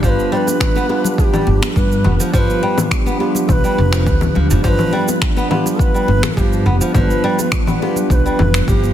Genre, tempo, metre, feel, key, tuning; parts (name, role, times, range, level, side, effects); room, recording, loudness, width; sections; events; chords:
organic downtempo; 104 BPM; 4/4; straight; A4 = 439 Hz
breathy bright low Native American-style wooden flute; melody; 0.0-8.9 s; G4 to C5; -22 LUFS; equal; ping-pong delay
tine electric piano; accompaniment; 0.0-8.9 s; G3 to F4; -23 LUFS; left 1 dB; medium stereo tremolo, sidechain pumping, ping-pong delay
warbly tape-like pad; sustained chords; 0.0-8.9 s; F3 to B4; -23 LUFS; right 2 dB; chorus, built-in reverb, sidechain pumping
flamenco guitar; arpeggios; 0.0-8.9 s; F3 to B3; -23 LUFS; equal; ping-pong delay
upright bass; bass; 0.0-8.9 s; F1 to G2; -17 LUFS; equal; sidechain pumping
electronic kick drum; drums; 0.0-8.8 s; -17 LUFS; equal; overdrive, studio ambience
electronic shaker, finger snaps and congas; drums; 0.0-8.9 s; -22 LUFS; left 2 dB; studio ambience, soft clipping on snare
bongos and congas; percussion; 0.3-8.9 s; -27 LUFS; left 5 dB
light reverb; dense, heavily limited modern master; -13 LUFS; side -11 dB against mid
0.0-8.9 A section
0.0 G7